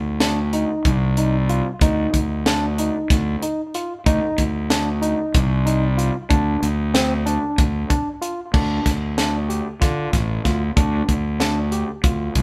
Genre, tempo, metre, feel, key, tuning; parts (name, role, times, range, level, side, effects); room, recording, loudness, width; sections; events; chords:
progressive instrumental, band music in an uneven meter; 188 BPM (eighths); 7/8; straight; D phrygian; A4 = 439 Hz
fuzz fingered electric bass; bass; 0.0-12.4 s; A1 to D3; -24 LUFS; equal; overdrive
overdriven tine electric piano; arpeggios; 0.2-12.4 s; C4 to G4; -27 LUFS; equal; digital delay
tight funk drum kit; drums; 0.2-12.4 s; crash cymbal, hi-hat, kick drum, snare drum; -22 LUFS; equal
light reverb; band playing live in one room; -20 LUFS; mono
0.0-8.5 A section; 8.5-12.4 B section
0.0 Cmadd9; 6.3 N.C.; 8.5 Dm